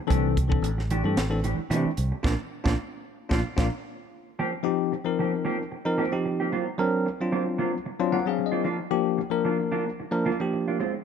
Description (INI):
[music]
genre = electric jazz fusion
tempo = 112 BPM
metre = 4/4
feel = swing 55% on 16ths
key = unclear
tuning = A4 = 437 Hz
[part]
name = bell-like tine electric piano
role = accompaniment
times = 0.1-10.8 s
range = E3 to F#5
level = -26 LUFS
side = moving between left 14 dB and right 4 dB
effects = auto-pan
[part]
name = mellow electric guitar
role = stabs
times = 0.1-11.0 s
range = E3 to G4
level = -31 LUFS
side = right 3 dB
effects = lush chorus
[part]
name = fingered electric bass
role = bass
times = 0.1-3.7 s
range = A1 to C3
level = -27 LUFS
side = right 1 dB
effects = none
[part]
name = crisp fusion drum kit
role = drums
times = 0.1-3.7 s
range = hi-hat, kick drum, snare drum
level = -28 LUFS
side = right 1 dB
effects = none
[sound]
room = light reverb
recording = none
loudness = -24 LUFS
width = side -7 dB against mid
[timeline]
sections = 0.0-4.4 A section; 4.4-11.0 B section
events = band accent 2.2-4.4; drum fill 3.3-4.4; tine electric piano fill 7.9-8.7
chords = 0.1 C69; 2.2 Bb; 4.4 Eb69; 6.5 D7alt; 8.7 Gm7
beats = | 0.10 0.63 1.17 1.70 | 2.24 2.77 3.31 3.84 | 4.38 4.91 5.45 5.98 | 6.52 7.05 7.59 8.12 | 8.66 9.19 9.72 10.26 | 10.79